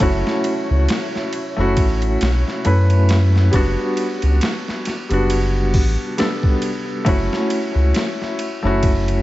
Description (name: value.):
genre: trip hop.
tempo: 68 BPM.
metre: 4/4.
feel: swing 57% on 16ths.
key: unclear.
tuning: A4 = 440 Hz.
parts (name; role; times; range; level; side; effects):
felt-muted upright piano; accompaniment; 0.0-9.2 s; G3 to B4; -20 LUFS; left 1 dB; tremolo, tape echo.
deep dark ambient pad; sustained chords; 0.0-3.5 s; F#4 to A5; -36 LUFS; right 6 dB; none.
round analog bass; bass; 0.0-9.2 s; F#1 to F#2; -17 LUFS; equal; tube saturation.
boom bap sampler-style drum kit; drums; 0.0-9.2 s; hi-hat, kick drum, ride cymbal, snare drum; -23 LUFS; equal; overdrive, studio reverb.
flickering grainy texture; texture; 0.0-3.6 s; C#5; -37 LUFS; right 1 dB; none.
room: little or no reverb.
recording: vinyl crackle, nothing above 7.9 kHz.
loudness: -16 LUFS.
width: side -16 dB against mid.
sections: 0.0-3.5 A section; 3.5-9.2 B section.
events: none.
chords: 0.0 F#m7; 3.5 Gmaj9/F#; 7.1 F#m7.